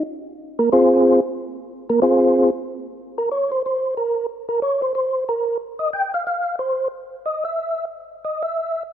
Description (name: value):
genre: jazz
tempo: 184 BPM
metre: 4/4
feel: swing 64% on 8ths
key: unclear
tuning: A4 = 440 Hz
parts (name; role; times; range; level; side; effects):
- percussive tonewheel organ; solo; 0.0-8.8 s; Bb3 to G5; -18 LUFS; equal; slow rotary speaker, chorus vibrato
room: moderate plate reverb, RT60 2.5 s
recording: rough home demo mix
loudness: -18 LUFS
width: side -10 dB against mid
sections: 0.0-8.9 A section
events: tonewheel organ solo 0.0-8.9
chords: 0.0 Fm; 2.3 Bb5; 4.9 N.C.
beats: 0.03 0.36 0.69 | 1.01 1.34 1.66 1.99 | 2.31 2.64 2.97 3.29 | 3.62 3.94 4.27 4.60 | 4.92 5.25 5.58 5.90 | 6.23 6.56 6.89 7.21 | 7.54 7.87 8.20 8.52